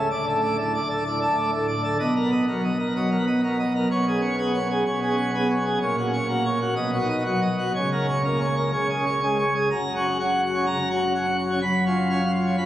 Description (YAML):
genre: classical, organ toccata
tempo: 126 BPM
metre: 4/4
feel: straight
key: F# major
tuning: A4 = 440 Hz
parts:
  - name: pipe organ, plenum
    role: solo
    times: 0.0-12.7 s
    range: D1 to B5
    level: -21 LUFS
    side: equal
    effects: none
room: wet church reverb, RT60 3.8 s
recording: recorded on a phone in the room, studio reverb, faint mains hum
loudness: -21 LUFS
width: side -13 dB against mid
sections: 0.0-9.7 A section; 9.7-12.7 B section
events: none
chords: 0.1 D5; 2.0 Bmaj7; 3.9 C#5/B; 5.8 F#/A#; 6.8 B; 7.7 A#m/C#; 8.7 C#5; 9.7 F#; 11.6 C#7/F#